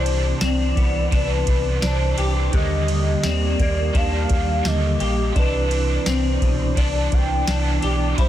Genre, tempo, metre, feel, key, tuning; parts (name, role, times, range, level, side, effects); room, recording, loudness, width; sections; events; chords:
dream pop; 85 BPM; 4/4; straight; C major; A4 = 440 Hz
warm velvety synth lead; melody; 0.0-8.3 s; B4 to G5; -27 LUFS; left 2 dB; chorus, digital delay, shimmer reverb
overdriven electric guitar; accompaniment; 0.0-8.3 s; C3 to E4; -29 LUFS; right 4 dB; harmonic tremolo, analog chorus, shimmer reverb
percussive tonewheel organ; sustained chords; 0.0-8.3 s; C3 to D5; -28 LUFS; right 2 dB; chorus vibrato, slow rotary speaker
semi-hollow electric guitar; arpeggios; 0.0-8.3 s; B2 to G4; -26 LUFS; left 3 dB; ensemble chorus, digital delay, shimmer reverb
sub bass with octave; bass; 0.0-8.3 s; Bb1 to Eb2; -22 LUFS; equal
soft vintage rhythm box; drums; 0.1-8.3 s; kick drum, ride cymbal, snare drum, tambourine; -24 LUFS; equal; overdrive
light reverb, digital ambience; dense, heavily limited modern master; -18 LUFS; side -12 dB against mid
0.0-8.3 A section
0.0 Cmaj9; 2.5 Ebmaj7; 5.4 Cmaj9